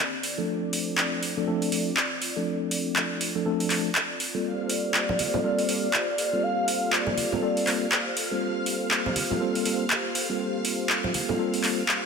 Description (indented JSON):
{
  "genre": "deep house",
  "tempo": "121 BPM",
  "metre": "4/4",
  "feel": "swing 59% on 16ths",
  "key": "G minor",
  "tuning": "A4 = 441 Hz",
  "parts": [
    { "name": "warm analog pad", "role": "sustained chords", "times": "0.0-12.1 s", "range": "Eb3 to D5", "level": "-34 LUFS", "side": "right 1 dB", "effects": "chorus" },
    { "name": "deep house drum kit", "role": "drums", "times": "0.2-12.0 s", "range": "handclaps, hi-hat", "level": "-26 LUFS", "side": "equal", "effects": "overdrive" },
    { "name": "mellow tine electric piano", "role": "stabs", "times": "0.4-11.8 s", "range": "F3 to A4", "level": "-29 LUFS", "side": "left 1 dB", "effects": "medium stereo tremolo, low-pass filter, tape echo" },
    { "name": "warm velvety synth lead", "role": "melody", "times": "4.4-8.1 s", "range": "D5 to F5", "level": "-29 LUFS", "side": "equal", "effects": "chorus, ping-pong delay" },
    { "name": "string machine, violins", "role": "texture", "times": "4.4-12.1 s", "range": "F5 to F6", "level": "-37 LUFS", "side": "equal", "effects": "ensemble chorus" },
    { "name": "congas", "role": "percussion", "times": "5.1-11.4 s", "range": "none", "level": "-32 LUFS", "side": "right 3 dB", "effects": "none" }
  ],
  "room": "moderate lush hall reverb, RT60 2.0 s",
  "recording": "none",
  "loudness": "-23 LUFS",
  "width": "side -5 dB against mid",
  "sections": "0.0-12.1 A section",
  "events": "none",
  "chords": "0.2 Dm7; 4.4 Gm11",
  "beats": "| 0.48 0.98 1.47 1.97 | 2.46 2.96 3.46 3.95 | 4.45 4.94 5.44 5.94 | 6.43 6.93 7.42 7.92 | 8.41 8.91 9.41 9.90 | 10.40 10.89 11.39 11.89"
}